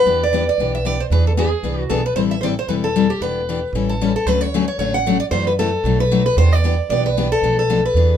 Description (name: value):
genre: acoustic string swing (jazz manouche)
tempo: 228 BPM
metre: 4/4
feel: swing 57% on 8ths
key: E minor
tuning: A4 = 441 Hz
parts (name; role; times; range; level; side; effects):
- picked steel-string acoustic guitar; melody; 0.0-8.2 s; G4 to F#5; -19 LUFS; equal; none
- picked steel-string acoustic guitar; accompaniment; 0.1-8.1 s; B2 to A4; -21 LUFS; left 6 dB; none
- upright bass; bass; 0.1-8.2 s; E1 to F#2; -20 LUFS; right 2 dB; none
room: moderate studio reverb, RT60 0.6 s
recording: minimal, uncompressed stereo recording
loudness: -16 LUFS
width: side -9 dB against mid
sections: 0.1-8.2 A section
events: none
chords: 0.1 Em7; 1.1 E7; 2.2 Am7; 3.2 Em7; 3.7 A7; 4.3 Dmaj7; 5.3 F#m7b5; 5.8 B7; 6.4 Em7; 7.4 Bm7b5